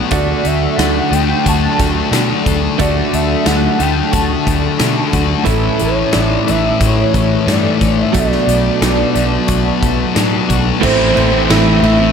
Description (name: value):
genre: rock, shoegaze and dream pop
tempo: 90 BPM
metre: 4/4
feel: straight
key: D major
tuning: A4 = 438 Hz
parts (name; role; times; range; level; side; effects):
- dark analog pad; sustained chords; 0.0-12.1 s; F#3 to A5; -26 LUFS; right 1 dB; chorus
- direct-recorded clean electric guitar; arpeggios; 0.0-12.1 s; E3 to F#4; -26 LUFS; left 7 dB; ensemble chorus, analog delay
- direct-recorded clean electric guitar; riff; 0.0-12.1 s; A2 to F#4; -19 LUFS; right 11 dB; reverse reverb
- thick fuzz guitar; riff; 0.0-12.1 s; A2 to D4; -17 LUFS; left 11 dB; distortion, lush chorus
- warm velvety synth lead; melody; 0.1-12.1 s; A4 to A5; -20 LUFS; right 1 dB; chorus, analog delay
- vintage muted fingered electric bass; bass; 0.1-12.1 s; A1 to B2; -18 LUFS; equal; none
- huge arena drum kit; drums; 0.1-12.0 s; crash cymbal, hi-hat, kick drum, snare drum; -19 LUFS; equal; none
- crunchy overdriven guitar; riff; 10.8-12.1 s; A2 to E4; -17 LUFS; equal; none
room: light reverb, studio reverb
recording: none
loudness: -11 LUFS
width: side -7 dB against mid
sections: 0.0-10.8 A section; 10.8-12.1 B section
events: none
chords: 0.1 D; 5.5 A; 8.2 Bm7; 10.8 Am